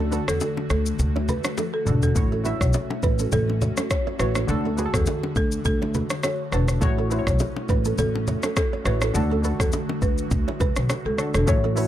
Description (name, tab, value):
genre	afrobeats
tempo	103 BPM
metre	4/4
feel	swing 55% on 16ths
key	unclear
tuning	A4 = 440 Hz
part	warm analog keys	accompaniment	0.0-11.9 s	D3 to E5	-31 LUFS	left 2 dB	chorus
part	airy breathy pad	sustained chords	0.0-11.9 s	D3 to F#4	-33 LUFS	equal	chorus
part	nylon-string guitar	riff	0.0-11.9 s	C#4 to C#5	-32 LUFS	right 7 dB	ping-pong delay
part	upright bass	bass	0.0-11.8 s	E1 to E2	-24 LUFS	equal	none
part	afro-pop drum kit	drums	0.1-11.9 s	hi-hat, kick drum, rim click, shaker, toms	-25 LUFS	equal	none
part	bongos and congas	percussion	0.1-11.0 s	none	-30 LUFS	left 1 dB	none
part	folk marimba with medium mallets	melody	0.3-11.6 s	A4 to C#5	-30 LUFS	equal	ping-pong delay
room	small room ambience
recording	dark, warm production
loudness	-21 LUFS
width	side -12 dB against mid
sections	0.0-11.5 A section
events	break 0.0-2.2; drum fill 1.6-2.2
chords	0.0 D; 2.2 A6; 4.5 D; 6.8 A6; 9.1 D